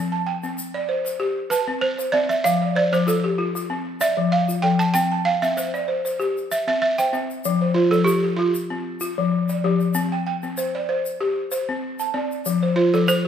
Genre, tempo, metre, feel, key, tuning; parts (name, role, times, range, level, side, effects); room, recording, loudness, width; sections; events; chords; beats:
west african traditional, West African string and xylophone music; 96 BPM; 4/4; swing 54% on 16ths; F major; A4 = 440 Hz
balafon; arpeggios; 0.0-13.3 s; F3 to A5; -22 LUFS; left 3 dB
egg shaker; percussion; 0.4-13.2 s; -33 LUFS; left 3 dB
balafon; melody; 1.5-13.3 s; F4 to A5; -20 LUFS; right 4 dB
wet recital hall reverb, RT60 1.3 s; -19 LUFS; side -8 dB against mid
0.0-7.4 A section; 7.4-13.3 B section
balafon solo 0.0-7.4
0.0 C; 2.4 F; 4.9 C; 7.4 F5; 9.9 C5; 12.5 F5
0.57 1.20 1.82 | 2.44 3.07 3.69 4.32 | 4.95 5.57 6.20 6.82 | 7.45 8.07 8.70 9.32 | 9.95 10.57 11.20 11.82 | 12.45 13.08